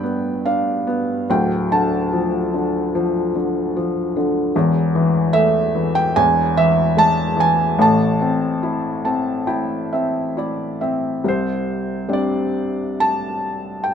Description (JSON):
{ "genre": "classical, lyrical solo piano", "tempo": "67-76 BPM", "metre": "4/4", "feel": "rubato", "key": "A minor", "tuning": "A4 = 439 Hz", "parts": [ { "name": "felt-muted upright piano", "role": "solo", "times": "0.0-13.9 s", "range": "D1 to B5", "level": "-17 LUFS", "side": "equal", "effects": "none" } ], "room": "light reverb", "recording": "minimal, uncompressed stereo recording", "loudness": "-17 LUFS", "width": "side -8 dB against mid", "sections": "0.0-11.3 A section; 11.3-13.9 B section", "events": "felt piano fill 8.6-11.3", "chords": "0.0 G; 1.3 Dm; 4.5 Esus4; 6.2 E; 7.8 Am; 11.3 Csus2" }